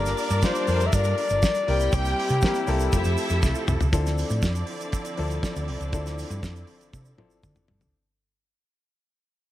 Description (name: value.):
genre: disco.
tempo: 120 BPM.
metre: 4/4.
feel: straight.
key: unclear.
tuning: A4 = 439 Hz.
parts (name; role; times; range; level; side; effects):
mellow flugelhorn; melody; 0.0-3.4 s; G4 to E5; -26 LUFS; left 2 dB; none.
warm studio violin section; second line; 0.0-7.9 s; D4 to G5; -34 LUFS; right 2 dB; none.
warm grand piano; accompaniment; 0.0-8.0 s; F3 to Bb4; -31 LUFS; left 4 dB; none.
rich studio string section; sustained chords; 0.0-7.9 s; C3 to Bb4; -34 LUFS; equal; none.
hollow-body short-scale fingered electric bass; bass; 0.0-7.9 s; F1 to D3; -26 LUFS; equal; none.
damped 70s drum kit; drums; 0.1-7.9 s; hi-hat, kick drum, snare drum, toms; -27 LUFS; equal; none.
tube shaker; percussion; 0.1-7.9 s; none; -42 LUFS; right 6 dB; none.
room: light reverb, small room ambience.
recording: none.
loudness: -22 LUFS.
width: side -14 dB against mid.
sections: 0.0-3.9 A section; 3.9-7.9 B section.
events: drum fill 3.4-3.9, 6.9-7.9; fade-out 3.9-7.9.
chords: 0.0 Gm7; 1.7 C7; 2.9 Fmaj9; 3.9 Dm9.